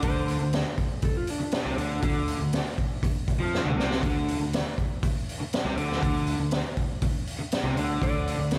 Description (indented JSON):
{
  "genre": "classic rock",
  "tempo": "120 BPM",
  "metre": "4/4",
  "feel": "straight",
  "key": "unclear",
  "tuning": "A4 = 440 Hz",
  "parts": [
    { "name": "clean lap steel guitar", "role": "second line", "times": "0.0-2.3, 8.0-8.6 s", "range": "D4 to D5", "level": "-38 LUFS", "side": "equal", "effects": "tape echo, slapback echo" },
    { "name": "distorted electric guitar", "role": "riff", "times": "0.0-8.6 s", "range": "C3 to F3", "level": "-35 LUFS", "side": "equal", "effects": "distortion" },
    { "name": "raw garage guitar", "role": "riff", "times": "0.0-8.6 s", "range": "C3 to F3", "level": "-36 LUFS", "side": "equal", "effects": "overdrive, slapback echo" },
    { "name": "fuzz fingered electric bass", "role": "bass", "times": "0.0-8.6 s", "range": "C2 to F2", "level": "-35 LUFS", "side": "equal", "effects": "overdrive" },
    { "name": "raw garage drum kit", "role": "drums", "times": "0.0-8.6 s", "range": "hi-hat, kick drum, snare drum, toms", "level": "-30 LUFS", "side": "equal", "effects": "none" }
  ],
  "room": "moderate scoring stage reverb, RT60 2.2 s",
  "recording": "big arena sound",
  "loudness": "-27 LUFS",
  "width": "mono",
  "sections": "0.0-8.6 A section",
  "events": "drum fill 3.5-4.0",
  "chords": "0.0 D5",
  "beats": "| 0.03 0.53 1.03 1.53 | 2.03 2.53 3.03 3.53 | 4.03 4.53 5.02 5.52 | 6.02 6.52 7.02 7.52 | 8.02 8.51"
}